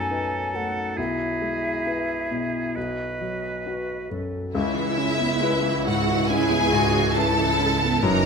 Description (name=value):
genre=cinematic, emotional film score for orchestra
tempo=69 BPM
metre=4/4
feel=rubato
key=C# minor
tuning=A4 = 440 Hz
part: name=bright oboe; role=second line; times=0.0-4.2 s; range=G#4 to B4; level=-31 LUFS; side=right 4 dB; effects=none
part: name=clear clarinet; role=second line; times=0.0-4.6 s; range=D#4 to A4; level=-33 LUFS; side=equal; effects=none
part: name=hollow concert flute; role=second line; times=0.0-4.1 s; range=D#5 to G#5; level=-30 LUFS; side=equal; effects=none
part: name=warm grand piano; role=accompaniment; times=0.0-8.3 s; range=B1 to B4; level=-27 LUFS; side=left 3 dB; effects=none
part: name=clear symphonic violin section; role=melody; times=4.5-8.3 s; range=E5 to A#5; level=-26 LUFS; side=left 2 dB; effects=none
part: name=rich symphonic viola section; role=accompaniment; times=4.5-8.3 s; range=C#3 to E4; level=-27 LUFS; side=right 3 dB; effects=none
part: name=warm studio violin section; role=second line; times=4.6-8.3 s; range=E4 to A#4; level=-26 LUFS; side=left 1 dB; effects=none
part: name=rich symphonic double bass section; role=bass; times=4.6-8.3 s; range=F#1 to C#2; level=-27 LUFS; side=right 5 dB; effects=none
part: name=rich studio cello section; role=bass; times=6.3-8.3 s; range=D#4 to F#4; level=-27 LUFS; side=right 6 dB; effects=none
room=moderate recital hall reverb, RT60 1.4 s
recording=none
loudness=-21 LUFS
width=side -5 dB against mid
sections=0.0-4.6 A section; 4.6-8.3 A section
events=none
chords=0.0 B7; 1.0 E/B; 2.8 B; 4.6 C#m7